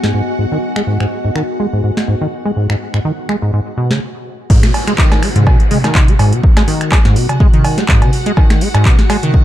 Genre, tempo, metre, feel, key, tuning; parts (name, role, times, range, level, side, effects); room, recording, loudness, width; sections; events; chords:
acid house; 124 BPM; 4/4; swing 55% on 16ths; G# minor; A4 = 440 Hz
string machine, full ensemble; sustained chords; 0.0-9.4 s; F#4 to F#5; -26 LUFS; equal; ensemble chorus, sidechain pumping
liquid acid bass; riff; 0.0-9.4 s; G#2 to G#3; -16 LUFS; equal; chorus, sidechain pumping
booming analog drum machine; drums; 0.0-9.3 s; cowbell, crash cymbal, finger snaps, handclaps, hi-hat, snare drum, toms; -17 LUFS; equal; overdrive
warbly tape-like pad; texture; 0.0-4.0 s; B3 to G#5; -24 LUFS; left 1 dB; chorus, built-in reverb, sidechain pumping
electronic kick drum; drums; 4.5-9.4 s; -10 LUFS; equal
downlifter; sound effects; 4.5-8.4 s; -27 LUFS; right 2 dB
digital ambience; dark, warm production; -11 LUFS; side -13 dB against mid
0.0-4.5 A section; 4.5-9.4 B section
filter sweep on acid bass 0.0-4.5; filter sweep on string machine 0.0-4.5; stop 4.0-4.5; drop 4.5-9.4
0.0 G#m7